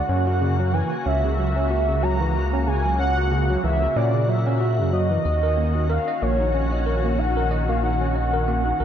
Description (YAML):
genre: IDM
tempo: 93 BPM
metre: 4/4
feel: swing 56% on 16ths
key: unclear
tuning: A4 = 436 Hz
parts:
  - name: warm velvety synth lead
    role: melody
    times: 0.0-8.8 s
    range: C#5 to A#5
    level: -25 LUFS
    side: equal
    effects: chorus, digital delay
  - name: warm analog pad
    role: sustained chords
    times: 0.0-8.8 s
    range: C#3 to F#4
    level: -28 LUFS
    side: left 3 dB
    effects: chorus
  - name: round analog bass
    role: bass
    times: 0.0-8.8 s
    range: A#1 to A#2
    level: -22 LUFS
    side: equal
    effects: none
  - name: backwards swelling texture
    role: texture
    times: 0.0-8.8 s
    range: F#4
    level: -38 LUFS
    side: right 2 dB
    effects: built-in reverb
  - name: tine electric piano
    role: arpeggios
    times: 0.1-8.8 s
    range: C#3 to D#5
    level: -26 LUFS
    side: right 3 dB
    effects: overdrive, fast stereo tremolo
room: moderate lush hall reverb, RT60 2.6 s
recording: rough home demo mix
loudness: -19 LUFS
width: side -9 dB against mid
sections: 0.0-8.8 A section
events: none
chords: 0.1 F#; 5.3 D#m7